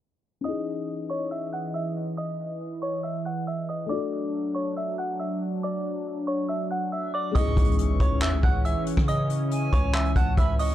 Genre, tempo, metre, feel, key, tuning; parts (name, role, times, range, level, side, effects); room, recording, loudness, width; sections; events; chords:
hip hop, trap; 139 BPM; 4/4; half-time; C# minor; A4 = 440 Hz
delicate synth tine bell; melody; 0.4-10.7 s; C#5 to F#6; -31 LUFS; right 1 dB; chorus, low-pass filter, ping-pong delay
felt-muted upright piano; accompaniment; 0.4-10.7 s; G#3 to A4; -35 LUFS; left 6 dB; low-pass filter
warm analog pad; sustained chords; 0.6-10.7 s; E3 to D#5; -31 LUFS; equal; chorus
silver concert flute; second line; 7.4-10.7 s; G#5 to C#6; -38 LUFS; right 6 dB; ping-pong delay
hard-hitting 808-style bass; bass; 7.4-10.7 s; C#2 to C#3; -26 LUFS; equal
vintage brush drum kit; drums; 7.4-10.7 s; handclaps, hi-hat, kick drum, rim click; -24 LUFS; equal
impact; sound effects; 7.4-9.1 s; -33 LUFS; equal
small room ambience; dark, warm production, low-pass filter; -24 LUFS; side -12 dB against mid
0.4-7.4 A section; 7.4-10.7 B section
filter sweep 0.4-7.4; impact 7.4-9.1
0.4 C#madd9; 3.9 Dmaj7; 7.4 C#madd9